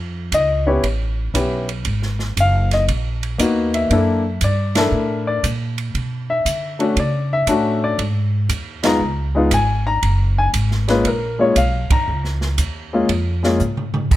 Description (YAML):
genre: jazz piano trio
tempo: 118 BPM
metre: 4/4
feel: swing 67% on 8ths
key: unclear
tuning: A4 = 440 Hz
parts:
  - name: upright bass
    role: bass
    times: 0.0-14.2 s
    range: F#1 to D3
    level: -20 LUFS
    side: equal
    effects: none
  - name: warm upright piano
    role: melody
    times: 0.3-13.6 s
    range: G#3 to A#5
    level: -18 LUFS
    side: left 2 dB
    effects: none
  - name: open jazz drum kit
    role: drums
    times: 0.3-14.2 s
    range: crash cymbal, hi-hat, kick drum, ride cymbal, snare drum, toms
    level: -24 LUFS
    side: right 2 dB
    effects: none
room: light reverb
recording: none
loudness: -16 LUFS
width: side -14 dB against mid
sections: 0.0-14.1 A section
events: band accent 4.7, 8.8, 11.8; drum fill 13.6-14.1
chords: 0.0 C#add9; 0.8 A9; 1.9 G#m9; 3.9 F#7alt; 5.9 Bm9; 8.0 G#5; 9.0 C#5; 10.0 F#maj9